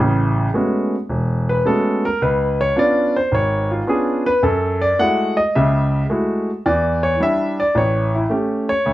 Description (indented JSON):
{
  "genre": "solo jazz",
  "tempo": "108 BPM",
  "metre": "4/4",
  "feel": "swing 69% on 8ths",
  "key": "A major",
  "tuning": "A4 = 439 Hz",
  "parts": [
    { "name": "clear grand piano", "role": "solo", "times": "0.0-8.9 s", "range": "E1 to F#5", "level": "-16 LUFS", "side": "equal", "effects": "none" }
  ],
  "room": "light reverb",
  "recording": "dark, warm production",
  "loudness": "-16 LUFS",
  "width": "side -15 dB against mid",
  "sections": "0.0-8.9 A section",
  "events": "grand piano solo 0.0-8.9",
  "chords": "0.0 Amaj13; 2.2 C#7b9; 4.4 F#m9; 6.6 Em7; 7.7 A7"
}